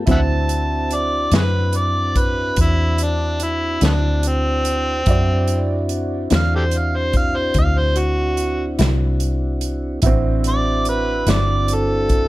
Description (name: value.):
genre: slow blues.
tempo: 48 BPM (dotted quarters).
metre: 12/8.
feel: straight.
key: unclear.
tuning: A4 = 439 Hz.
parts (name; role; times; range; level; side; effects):
warm upright piano; accompaniment; 0.0-12.3 s; C4 to D5; -28 LUFS; right 6 dB; none.
mellow tonewheel organ; sustained chords; 0.0-12.3 s; C4 to F#4; -26 LUFS; left 1 dB; slow rotary speaker.
vintage muted fingered electric bass; bass; 0.0-12.3 s; G1 to F#2; -20 LUFS; equal; none.
overdriven harmonica; melody; 0.1-12.3 s; A3 to A5; -21 LUFS; equal; slapback echo.
clean electric guitar; accompaniment; 0.1-11.5 s; D3 to E4; -23 LUFS; left 4 dB; tremolo.
natural country drum kit; drums; 0.1-12.3 s; hi-hat, kick drum, snare drum; -21 LUFS; equal; none.
room: small room ambience.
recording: none.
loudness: -16 LUFS.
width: side -17 dB against mid.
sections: 0.0-12.3 A section.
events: none.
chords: 0.1 D9.